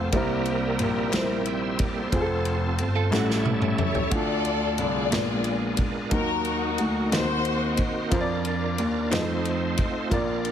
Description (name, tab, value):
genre	slow gospel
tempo	60 BPM (dotted quarters)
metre	6/8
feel	straight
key	Bb major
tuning	A4 = 438 Hz
part	warm studio string section	melody	0.0-0.1, 3.8-8.1 s	Eb4 to D5	-28 LUFS	left 4 dB	none
part	dark upright piano	accompaniment	0.0-10.5 s	A2 to Eb5	-29 LUFS	equal	none
part	bright tonewheel organ	sustained chords	0.0-10.5 s	G3 to G5	-30 LUFS	right 2 dB	slow rotary speaker, chorus vibrato
part	dark baby grand piano	bass	0.0-10.5 s	F1 to F2	-28 LUFS	left 1 dB	none
part	natural country drum kit	drums	0.1-10.5 s	kick drum, ride cymbal, snare drum, toms	-29 LUFS	equal	none
part	group handclap	percussion	1.1-9.4 s	none	-36 LUFS	left 2 dB	none
part	clean electric guitar	second line	3.0-4.1 s	C#4 to A4	-32 LUFS	right 8 dB	tremolo
room	light reverb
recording	heavily compressed radio sound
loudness	-22 LUFS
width	side -9 dB against mid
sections	0.0-10.5 A section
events	drum fill 3.1-4.1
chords	0.1 C7; 2.1 F; 3.1 A7; 4.1 Dm; 5.1 Bb7b9; 6.1 Ebm; 7.1 Ebm6; 8.1 Bb/F; 9.1 F7